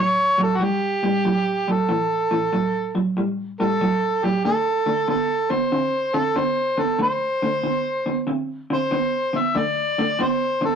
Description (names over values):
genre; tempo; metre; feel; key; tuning
blues; 94 BPM; 4/4; swing 66% on 8ths; unclear; A4 = 444 Hz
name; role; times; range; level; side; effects
overdriven harmonica; melody; 0.0-10.8 s; F#4 to E5; -21 LUFS; equal; none
electric guitar through a small old amp; riff; 0.0-10.8 s; A2 to C4; -23 LUFS; right 1 dB; warbly pitch drift
room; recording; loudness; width
moderate studio reverb, RT60 0.6 s; rough rehearsal-room recording, warm saturation; -19 LUFS; side -7 dB against mid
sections
0.0-10.8 A section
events
none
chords
0.0 A5; 4.5 D7(no3)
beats
0.61 1.25 | 1.89 2.53 3.17 3.81 | 4.45 5.09 5.73 6.37 | 7.01 7.65 8.29 8.93 | 9.57 10.21